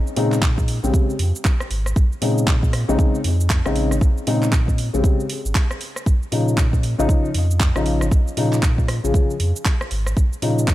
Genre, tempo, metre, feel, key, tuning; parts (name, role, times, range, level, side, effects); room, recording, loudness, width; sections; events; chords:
deep house; 117 BPM; 4/4; swing 60% on 16ths; Bb dorian; A4 = 438 Hz
warm sub bass; bass; 0.0-10.7 s; Ab1 to Bb2; -21 LUFS; equal; sidechain pumping
house drum kit; drums; 0.1-10.7 s; handclaps, hi-hat, rim click, shaker; -27 LUFS; right 2 dB
felt-muted upright piano; stabs; 0.2-10.7 s; Db3 to Ab4; -22 LUFS; left 2 dB; sidechain pumping, tape echo
electronic kick drum; drums; 0.4-10.7 s; -18 LUFS; equal
little or no reverb; dry, gritty hardware recording; -17 LUFS; side -15 dB against mid
0.0-10.7 A section
0.0 Bbm11; 6.1 Dbadd9